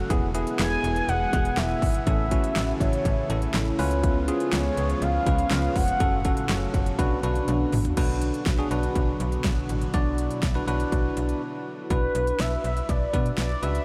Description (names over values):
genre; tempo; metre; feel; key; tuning
synth-pop; 122 BPM; 4/4; straight; B dorian; A4 = 440 Hz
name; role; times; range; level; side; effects
phased analog pad; sustained chords; 0.0-11.9 s; A2 to A4; -34 LUFS; equal; phaser, chorus
slap-like FM bass; bass; 0.0-13.8 s; E1 to B2; -30 LUFS; equal; none
bell-like tine electric piano; accompaniment; 0.1-13.8 s; B3 to D5; -32 LUFS; equal; none
pop drum kit; drums; 0.1-13.8 s; crash cymbal, handclaps, hi-hat, kick drum, snare drum, toms; -30 LUFS; equal; none
mellow horn-like synth lead; melody; 0.6-6.5, 11.9-13.8 s; B4 to G#5; -32 LUFS; equal; chorus, phaser, delay
room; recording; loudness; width
moderate huge ambient reverb, RT60 7.4 s; dreamy mix soaked in reverb; -25 LUFS; mono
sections
0.0-8.0 A section; 8.0-11.9 B section; 11.9-13.8 C section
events
drum fill 7.5-8.0; break 11.4-11.9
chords
0.1 E; 2.1 A; 3.8 C#7; 6.0 F#m; 7.0 Bm